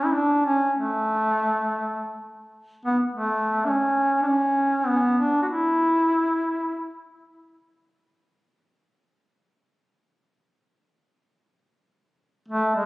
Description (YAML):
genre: fado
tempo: free time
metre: none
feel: none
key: unclear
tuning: A4 = 437 Hz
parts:
  - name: warm duduk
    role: solo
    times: 0.0-7.0, 12.5-12.9 s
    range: G#3 to F#4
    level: -21 LUFS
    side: equal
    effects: none
room: wet recital hall reverb, RT60 1.8 s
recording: recorded on a phone in the room, club reverb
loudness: -21 LUFS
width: side -20 dB against mid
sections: 0.0-12.9 A section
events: none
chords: none